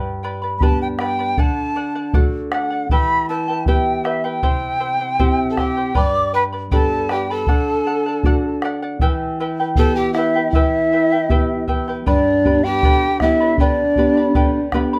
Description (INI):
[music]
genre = andean folk, Andean ensemble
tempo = 79 BPM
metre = 2/4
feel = straight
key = unclear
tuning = A4 = 435 Hz
[part]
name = charango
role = accompaniment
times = 0.0-15.0 s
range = E4 to B5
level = -27 LUFS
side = equal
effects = none
[part]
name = nylon-string guitar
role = accompaniment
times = 0.0-15.0 s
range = G2 to G4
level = -25 LUFS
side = equal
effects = none
[part]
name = large quena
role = melody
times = 0.6-14.7 s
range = D5 to D6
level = -23 LUFS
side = equal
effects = none
[part]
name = bombo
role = percussion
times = 0.6-14.9 s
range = none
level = -22 LUFS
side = equal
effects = none
[part]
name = pan flute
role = second line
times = 5.5-14.7 s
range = D4 to D5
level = -23 LUFS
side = equal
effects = none
[sound]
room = wet small room reverb, RT60 0.5 s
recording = none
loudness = -18 LUFS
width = mono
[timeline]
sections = 0.0-12.1 A section; 12.1-15.0 B section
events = none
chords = 0.0 G; 1.4 D; 2.9 Em; 4.4 C; 6.0 G; 7.5 D; 9.0 Em; 12.1 G